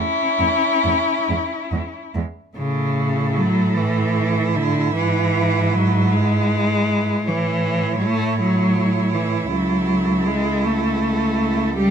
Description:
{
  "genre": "classical, lyrical piece for cello ensemble",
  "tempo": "44-55 BPM (dotted quarters)",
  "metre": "6/8",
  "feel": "rubato",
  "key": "A major",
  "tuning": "A4 = 440 Hz",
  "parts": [
    { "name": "warm cello", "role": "melody", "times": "0.0-11.9 s", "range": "E4 to C#5", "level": "-25 LUFS", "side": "left 4 dB", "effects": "none" },
    { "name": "rich cello", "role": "second line", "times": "0.0-11.9 s", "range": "G#3 to G4", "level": "-26 LUFS", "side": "right 8 dB", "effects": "none" },
    { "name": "rich cello", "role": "accompaniment", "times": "0.0-11.9 s", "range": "C#3 to C#4", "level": "-20 LUFS", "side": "left 1 dB", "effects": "none" },
    { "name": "rich cello", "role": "bass", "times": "0.0-11.9 s", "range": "C#2 to A2", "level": "-23 LUFS", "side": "right 2 dB", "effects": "none" }
  ],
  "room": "light reverb",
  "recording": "close, detailed microphones",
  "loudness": "-17 LUFS",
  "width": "side -7 dB against mid",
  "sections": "0.0-2.6 A section; 2.6-11.9 B section",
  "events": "none",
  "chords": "0.0 A (rootless); 2.6 A; 4.9 E/G#; 7.3 A; 9.5 A/C#"
}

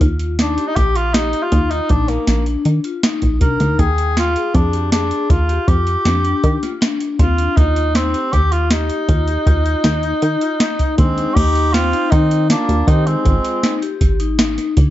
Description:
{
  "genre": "progressive instrumental, band music in an uneven meter",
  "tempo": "158 BPM",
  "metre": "5/4",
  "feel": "straight",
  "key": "Eb major",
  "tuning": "A4 = 439 Hz",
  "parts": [
    { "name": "vibraphone with medium hard mallets", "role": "arpeggios", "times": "0.0-14.9 s", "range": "C4 to G5", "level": "-23 LUFS", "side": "left 6 dB", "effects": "none" },
    { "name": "plucky analog bass", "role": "bass", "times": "0.0-14.9 s", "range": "Ab1 to Eb3", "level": "-17 LUFS", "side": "equal", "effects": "none" },
    { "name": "soft vintage rhythm box", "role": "drums", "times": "0.0-14.9 s", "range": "crash cymbal, hi-hat, kick drum, snare drum", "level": "-17 LUFS", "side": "equal", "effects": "none" },
    { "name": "mellow tenor saxophone", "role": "melody", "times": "0.4-13.8 s", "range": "Bb3 to Bb4", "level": "-19 LUFS", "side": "equal", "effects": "none" },
    { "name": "warm flugelhorn", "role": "second line", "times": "11.0-13.8 s", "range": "Ab3 to Eb4", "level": "-26 LUFS", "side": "right 5 dB", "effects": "none" }
  ],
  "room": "light reverb, small room ambience",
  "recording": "dark, warm production, nothing above 7.8 kHz",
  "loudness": "-14 LUFS",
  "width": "side -14 dB against mid",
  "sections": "0.0-11.4 A section; 11.4-14.9 B section",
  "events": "none",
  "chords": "0.0 Ebmaj7; 3.8 Ebmaj9; 7.6 Ab6/Eb (rootless); 11.4 Eb69; 13.2 Abmaj7"
}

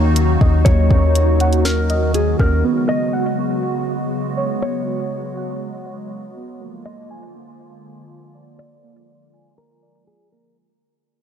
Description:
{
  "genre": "hip hop, atmospheric cloud-rap",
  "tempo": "121 BPM",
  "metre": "4/4",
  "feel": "half-time",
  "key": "unclear",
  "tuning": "A4 = 440 Hz",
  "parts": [
    { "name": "hollow soft pad", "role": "sustained chords", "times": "0.0-10.5 s", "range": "Db3 to Gb4", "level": "-22 LUFS", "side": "left 1 dB", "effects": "ensemble chorus, sidechain pumping, low-pass filter" },
    { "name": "muted felt-like synth keys", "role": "arpeggios", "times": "0.0-10.6 s", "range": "Bb3 to Ab5", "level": "-26 LUFS", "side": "right 4 dB", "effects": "chorus, low-pass filter, tape echo" },
    { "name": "long sustained 808-style bass", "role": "bass", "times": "0.0-2.6 s", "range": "Eb2", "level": "-16 LUFS", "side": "equal", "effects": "none" },
    { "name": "smooth R&B drum kit", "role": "drums", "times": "0.2-2.5 s", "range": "hi-hat, kick drum, snare drum", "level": "-17 LUFS", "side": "equal", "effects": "none" },
    { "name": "mellow electric guitar", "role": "melody", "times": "0.6-10.6 s", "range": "Ab4 to Eb5", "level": "-25 LUFS", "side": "left 1 dB", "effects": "low-pass filter, tape echo" }
  ],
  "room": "light reverb, digital ambience",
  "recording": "none",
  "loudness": "-15 LUFS",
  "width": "side -8 dB against mid",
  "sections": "0.0-10.6 A section",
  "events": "fade-out 0.0-10.6; filter sweep 0.0-10.6",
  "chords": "0.0 Ebm7; 2.6 Db7sus4; 6.6 Bb7"
}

